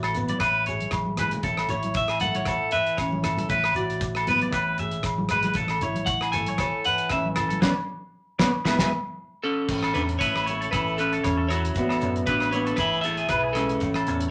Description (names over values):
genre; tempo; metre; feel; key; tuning
highlife guitar band; 116 BPM; 4/4; swing 55% on 16ths; A major; A4 = 440 Hz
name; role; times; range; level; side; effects
nylon-string guitar; accompaniment; 0.0-14.3 s; A2 to C#5; -33 LUFS; equal; none
electric guitar at the edge of break-up; arpeggios; 0.0-14.2 s; G#4 to E5; -30 LUFS; equal; none
fingered electric bass; bass; 0.0-14.3 s; A1 to F#2; -35 LUFS; equal; none
damped 70s drum kit; drums; 0.0-14.3 s; crash cymbal, hi-hat, kick drum, rim click, snare drum; -33 LUFS; equal; none
agogo bells; percussion; 0.0-14.1 s; none; -34 LUFS; equal; none
congas; percussion; 0.1-8.9 s; none; -35 LUFS; equal; none
shekere; percussion; 0.2-14.2 s; none; -41 LUFS; equal; none
electric guitar at the edge of break-up; melody; 2.0-14.3 s; C#4 to G#5; -29 LUFS; equal; none
room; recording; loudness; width
wet club reverb, RT60 0.6 s; none; -25 LUFS; mono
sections
0.0-9.7 A section; 9.7-14.3 B section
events
clean electric guitar solo 0.0-9.7; drum fill 0.8-1.4; band accent 7.6-9.7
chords
0.4 Amaj9; 1.4 A; 3.5 Bm/A; 4.5 E/A; 5.6 A; 7.6 Bmadd9/A; 8.7 E/A; 9.7 A; 11.8 Bmadd9/A; 12.8 E/A